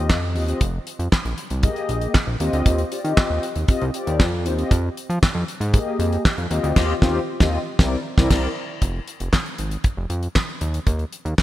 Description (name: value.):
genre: early-eighties boogie funk.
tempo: 117 BPM.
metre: 4/4.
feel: straight.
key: F dorian.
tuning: A4 = 440 Hz.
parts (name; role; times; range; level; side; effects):
mellow synth brass; accompaniment; 0.0-8.5 s; Bb3 to Eb5; -25 LUFS; left 2 dB; chorus.
fat analog bass; bass; 0.0-11.3 s; F1 to F3; -23 LUFS; equal; none.
damped 70s drum kit; drums; 0.1-11.4 s; crash cymbal, handclaps, hi-hat, kick drum, snare drum; -20 LUFS; equal; none.
room: light reverb, studio reverb.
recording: bright 1980s-style digital production.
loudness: -19 LUFS.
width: side -14 dB against mid.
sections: 0.0-8.8 A section; 8.8-11.4 B section.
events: band accent 6.8-8.8.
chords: 0.0 Eb69; 0.6 Fm11; 2.4 Eb69; 4.7 Fm11; 6.5 Eb69; 7.8 C9; 8.8 Fm; 10.6 N.C..